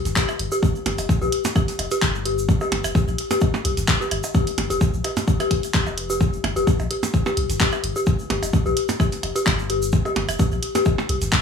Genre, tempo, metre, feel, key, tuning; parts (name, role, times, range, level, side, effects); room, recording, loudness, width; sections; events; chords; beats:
minimal techno; 129 BPM; 4/4; swing 53% on 16ths; G minor; A4 = 440 Hz
punchy sub bass; bass; 0.1-11.3 s; F1 to C2; -27 LUFS; left 1 dB; sidechain pumping
house drum kit; drums; 0.1-11.4 s; handclaps, hi-hat; -25 LUFS; equal
egg shaker; percussion; 0.1-11.4 s; -34 LUFS; right 2 dB
dark detuned synth bell; riff; 0.2-11.2 s; G4; -25 LUFS; left 3 dB; chorus, sidechain pumping, tape echo
electronic kick drum; drums; 0.2-11.4 s; -20 LUFS; equal
percussion blips; percussion; 0.2-11.1 s; -29 LUFS; right 6 dB; digital delay
little or no reverb; studio ambience; -19 LUFS; side -6 dB against mid
0.0-11.4 A section
0.0 G5
0.16 | 0.63 1.09 1.56 2.02 | 2.49 2.95 3.42 3.88 | 4.35 4.81 5.28 5.74 | 6.21 6.67 7.14 7.60 | 8.07 8.53 9.00 9.46 | 9.93 10.39 10.86 11.32